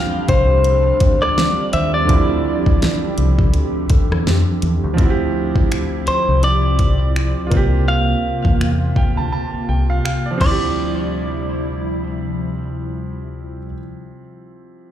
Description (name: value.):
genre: contemporary R&B.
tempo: 83 BPM.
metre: 4/4.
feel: swing 58% on 16ths.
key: D minor.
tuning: A4 = 443 Hz.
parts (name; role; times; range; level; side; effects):
clean electric guitar; melody; 0.0-13.7 s; C5 to F5; -21 LUFS; left 1 dB; digital delay.
clear baby grand piano; accompaniment; 0.0-14.9 s; D3 to A5; -24 LUFS; right 6 dB; none.
hollow soft pad; sustained chords; 0.0-13.7 s; C3 to G4; -25 LUFS; left 1 dB; ensemble chorus.
deep dub fingered electric bass; bass; 0.3-13.7 s; C2 to F2; -19 LUFS; equal; none.
smooth R&B drum kit; drums; 0.3-10.6 s; crash cymbal, finger snaps, hi-hat, kick drum, rim click, snare drum; -18 LUFS; equal; none.
soft round pluck; texture; 1.7-5.3 s; A4 to C5; -34 LUFS; right 1 dB; none.
room: digital ambience.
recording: played on a big sound system in a bare room, large studio reverb.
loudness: -15 LUFS.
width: side -11 dB against mid.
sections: 0.0-5.0 A section; 5.0-10.8 B section; 10.8-13.7 C section.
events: grand piano fill 8.6-10.8.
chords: 0.0 Dm11; 7.5 C7sus4; 10.4 Dm11.